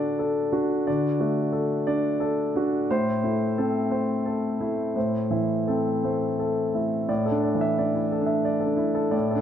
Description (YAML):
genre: neoclassical minimalist piano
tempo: 83-91 BPM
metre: 3/4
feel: rubato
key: unclear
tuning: A4 = 440 Hz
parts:
  - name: warm concert grand piano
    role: solo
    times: 0.0-9.4 s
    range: A2 to E5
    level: -22 LUFS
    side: equal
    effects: none
room: moderate recital hall reverb, RT60 1.6 s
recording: none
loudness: -22 LUFS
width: side -9 dB against mid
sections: 0.0-7.1 A section; 7.1-9.4 B section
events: none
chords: 0.0 D; 2.9 Am; 7.1 Dsus2/A